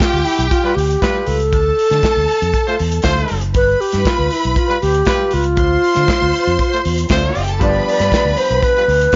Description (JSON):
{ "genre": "disco", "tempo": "118 BPM", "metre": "4/4", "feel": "straight", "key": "unclear", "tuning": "A4 = 440 Hz", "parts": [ { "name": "mellow hollow alto flute", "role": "melody", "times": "0.0-9.2 s", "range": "E4 to D5", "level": "-19 LUFS", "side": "equal", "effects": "none" }, { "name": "warm studio violin section", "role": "second line", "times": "0.0-9.2 s", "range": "C4 to C6", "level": "-24 LUFS", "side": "equal", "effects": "none" }, { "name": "warm soul drum kit", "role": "drums", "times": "0.0-9.2 s", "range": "handclaps, hi-hat, kick drum, snare drum", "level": "-22 LUFS", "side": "equal", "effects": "none" }, { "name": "fingered electric bass", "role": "bass", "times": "0.1-9.1 s", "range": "F#1 to D3", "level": "-21 LUFS", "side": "equal", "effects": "none" }, { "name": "warm horn section", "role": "stabs", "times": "0.6-9.2 s", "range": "G3 to C5", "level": "-23 LUFS", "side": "equal", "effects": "none" }, { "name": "clear concert grand piano", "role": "accompaniment", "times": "7.6-9.2 s", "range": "F3 to G4", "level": "-26 LUFS", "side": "equal", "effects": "none" } ], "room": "light reverb, studio reverb", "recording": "nothing above 7.5 kHz", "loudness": "-15 LUFS", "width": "mono", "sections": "0.0-9.2 A section", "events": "none", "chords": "0.0 G7; 1.5 Dm; 3.6 G7; 5.6 Dm7; 7.6 G7" }